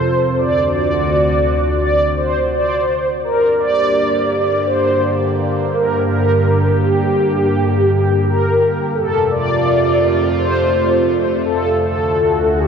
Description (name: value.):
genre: synthwave.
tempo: 84 BPM.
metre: 4/4.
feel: straight.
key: G minor.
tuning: A4 = 440 Hz.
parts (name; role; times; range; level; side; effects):
mellow synth brass; melody; 0.0-12.7 s; F#4 to D5; -16 LUFS; equal; chorus, ping-pong delay.
phased analog pad; sustained chords; 0.0-12.7 s; D2 to G4; -17 LUFS; right 1 dB; phaser, chorus.
room: wet huge ambient reverb, RT60 8.1 s.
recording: dreamy mix soaked in reverb.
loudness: -13 LUFS.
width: side -6 dB against mid.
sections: 0.0-3.2 A section; 3.2-12.7 B section.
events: filter sweep on analog synth pad 0.0-3.2; stop 2.5-3.2.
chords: 0.4 D; 3.2 Gm; 9.0 F; 11.8 D.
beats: | 0.39 1.10 1.81 2.53 | 3.24 3.96 4.67 5.39 | 6.10 6.81 7.53 8.24 | 8.96 9.67 10.39 11.10 | 11.81 12.53.